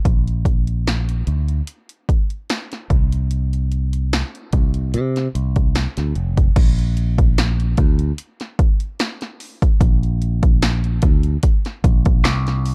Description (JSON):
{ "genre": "lush 1970s-style soul", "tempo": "74 BPM", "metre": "4/4", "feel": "swing 54% on 16ths", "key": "unclear", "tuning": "A4 = 439 Hz", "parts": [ { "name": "fingered electric bass", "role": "bass", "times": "0.1-12.7 s", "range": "F1 to C3", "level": "-21 LUFS", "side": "equal", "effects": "none" }, { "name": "punchy analog drum machine", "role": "drums", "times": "0.1-12.7 s", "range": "crash cymbal, hi-hat, kick drum, snare drum", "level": "-20 LUFS", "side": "equal", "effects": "none" } ], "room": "little or no reverb", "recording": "dark, warm production", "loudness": "-19 LUFS", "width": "mono", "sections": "0.0-6.6 A section; 6.6-12.7 B section", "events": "none", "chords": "none" }